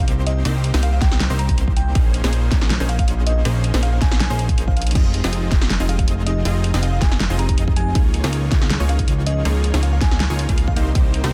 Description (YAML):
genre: future bass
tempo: 160 BPM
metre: 4/4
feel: half-time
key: F minor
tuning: A4 = 443 Hz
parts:
  - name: bell-like FM electric piano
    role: melody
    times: 0.0-10.8 s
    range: Eb5 to Bb5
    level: -33 LUFS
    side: equal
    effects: chorus, tremolo, sidechain pumping, tape echo
  - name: supersaw stab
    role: riff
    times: 0.0-11.3 s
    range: Bb3 to F5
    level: -30 LUFS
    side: equal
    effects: sidechain pumping
  - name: fat analog bass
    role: bass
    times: 0.0-11.3 s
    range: F1 to Db2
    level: -22 LUFS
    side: equal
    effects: sidechain pumping
  - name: pop drum kit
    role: drums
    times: 0.1-11.3 s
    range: crash cymbal, hi-hat, snare drum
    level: -27 LUFS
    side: equal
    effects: none
  - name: electronic kick drum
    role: drums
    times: 1.0-11.0 s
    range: none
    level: -21 LUFS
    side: equal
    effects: none
  - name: glassy digital keys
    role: accompaniment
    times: 4.9-11.3 s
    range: F3 to Eb5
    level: -32 LUFS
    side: equal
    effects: chorus, sidechain pumping
room: little or no reverb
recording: dense, heavily limited modern master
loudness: -18 LUFS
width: mono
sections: 0.0-11.3 A section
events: drum fill 4.8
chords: 0.0 Cm7; 2.0 Bbm11; 5.0 Fm7; 8.0 Db69; 10.8 Cm7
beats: 0.08 | 0.45 0.83 1.20 1.58 | 1.95 2.33 2.70 3.08 | 3.45 3.83 4.20 4.58 | 4.95 5.33 5.70 6.08 | 6.45 6.83 7.20 7.58 | 7.95 8.33 8.70 9.08 | 9.45 9.83 10.20 10.58 | 10.95 11.33